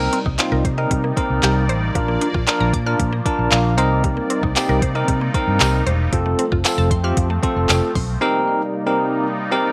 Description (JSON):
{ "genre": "dance-pop", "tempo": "115 BPM", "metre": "4/4", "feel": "straight", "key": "C dorian", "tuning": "A4 = 439 Hz", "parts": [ { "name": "bell-like tine electric piano", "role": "accompaniment", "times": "0.0-9.7 s", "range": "C4 to A5", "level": "-23 LUFS", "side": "equal", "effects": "sidechain pumping" }, { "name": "sweeping resonant pad", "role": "sustained chords", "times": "0.0-9.7 s", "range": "C3 to D5", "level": "-29 LUFS", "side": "equal", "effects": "chorus, sidechain pumping" }, { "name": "mallet-like synth pluck", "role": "arpeggios", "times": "0.0-8.0 s", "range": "F3 to F6", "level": "-30 LUFS", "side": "equal", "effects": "chorus, phaser, sidechain pumping, tape echo" }, { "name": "vintage muted fingered electric bass", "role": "bass", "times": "0.0-8.2 s", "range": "E1 to C3", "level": "-23 LUFS", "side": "equal", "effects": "sidechain pumping" }, { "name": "smooth R&B drum kit", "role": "drums", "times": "0.1-8.1 s", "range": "handclaps, hi-hat, kick drum", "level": "-24 LUFS", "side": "equal", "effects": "overdrive" }, { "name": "tambourine", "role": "percussion", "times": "4.6-7.8 s", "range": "none", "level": "-34 LUFS", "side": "equal", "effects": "none" } ], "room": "light reverb, digital ambience", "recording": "none", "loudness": "-19 LUFS", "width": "mono", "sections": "0.0-8.2 A section; 8.2-9.7 B section", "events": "tine electric piano fill 3.0-4.0", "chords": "0.0 Cm7; 2.0 Bb; 3.8 Cm7; 6.1 F; 8.2 Cm7" }